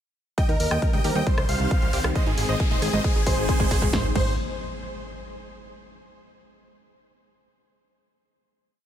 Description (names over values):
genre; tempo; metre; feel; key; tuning
uplifting trance; 135 BPM; 4/4; straight; Ab major; A4 = 440 Hz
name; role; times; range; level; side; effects
big supersaw lead; melody; 0.4-4.3 s; Ab4 to G5; -30 LUFS; right 1 dB; sidechain pumping, ping-pong delay
bright grand piano; second line; 0.4-4.3 s; Ab4 to G5; -36 LUFS; right 2 dB; none
warm velvety synth lead; second line; 0.4-4.3 s; C5 to Eb5; -36 LUFS; right 1 dB; chorus, ping-pong delay
analog string pad; sustained chords; 0.4-4.1 s; Eb3 to C4; -32 LUFS; left 1 dB; ensemble chorus, vintage 12-bit sampler grit, sidechain pumping
wide unison pluck; arpeggios; 0.4-4.4 s; G3 to Ab4; -33 LUFS; right 2 dB; sidechain pumping, ping-pong delay
electronic kick drum; drums; 0.4-4.2 s; none; -23 LUFS; equal; none
punchy analog drum machine; drums; 0.4-4.2 s; crash cymbal, hi-hat, rim click, snare drum; -33 LUFS; equal; sidechain pumping on hats, high-pass filter on hats, high-pass filter on snare, sidechain pumping on cymbals, high-pass filter on cymbals
riser and impact; sound effects; 1.3-5.7 s; none; -35 LUFS; left 1 dB; none
fat analog bass; bass; 0.5-4.4 s; Eb1 to Eb2; -27 LUFS; equal; sidechain pumping
room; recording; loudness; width
light reverb; none; -21 LUFS; side -10 dB against mid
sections
0.4-3.9 build; 3.9-5.7 final chord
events
build-up 0.4-3.9; riser 1.3-3.9; drum fill 2.2-3.9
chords
0.4 Eb; 1.3 Cm; 2.2 Ab